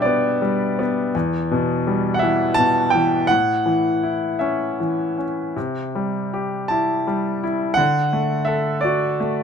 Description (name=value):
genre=classical, lyrical solo piano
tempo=54 BPM (dotted quarters)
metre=6/8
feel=uneven beats, rubato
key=D major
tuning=A4 = 439 Hz
part: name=bright grand piano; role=solo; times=0.0-9.4 s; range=E2 to A5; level=-18 LUFS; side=equal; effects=none
room=moderate studio reverb, RT60 0.8 s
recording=minimal, uncompressed stereo recording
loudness=-18 LUFS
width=side -7 dB against mid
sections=0.0-9.4 A section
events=none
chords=0.0 G/B; 1.1 Em; 3.3 A; 5.6 C; 7.8 D